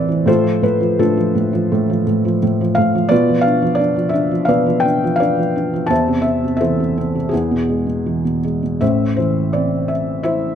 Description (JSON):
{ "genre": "classical, lyrical solo piano", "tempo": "84 BPM", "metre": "4/4", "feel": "uneven beats, rubato", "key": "unclear", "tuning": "A4 = 438 Hz", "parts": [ { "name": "felt-muted upright piano", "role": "solo", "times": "0.0-10.6 s", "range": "A1 to A5", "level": "-14 LUFS", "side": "equal", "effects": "none" } ], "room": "light reverb", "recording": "close, detailed microphones", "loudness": "-14 LUFS", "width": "side -8 dB against mid", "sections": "0.0-8.8 A section; 8.8-10.6 B section", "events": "none", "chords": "0.3 Dm/A; 3.1 Bdim; 5.9 Am/E; 7.3 E; 8.8 Am" }